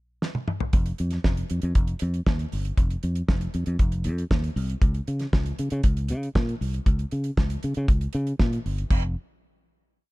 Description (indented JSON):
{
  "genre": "disco",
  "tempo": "118 BPM",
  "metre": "4/4",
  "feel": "straight",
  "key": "unclear",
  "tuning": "A4 = 439 Hz",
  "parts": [
    { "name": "damped 70s drum kit", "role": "drums", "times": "0.2-9.0 s", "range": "crash cymbal, hi-hat, kick drum, snare drum, toms", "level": "-24 LUFS", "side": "equal", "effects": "none" },
    { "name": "fingered electric bass", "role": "bass", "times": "0.7-9.1 s", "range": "F1 to Db3", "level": "-26 LUFS", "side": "equal", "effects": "none" }
  ],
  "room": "little or no reverb",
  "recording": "dark, warm production, faint mains hum",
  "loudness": "-23 LUFS",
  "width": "side -21 dB against mid",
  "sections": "0.0-0.7 pickup bar; 0.7-8.9 groove; 8.9-10.1 final note",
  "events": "drum fill 0.2-0.7",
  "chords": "none"
}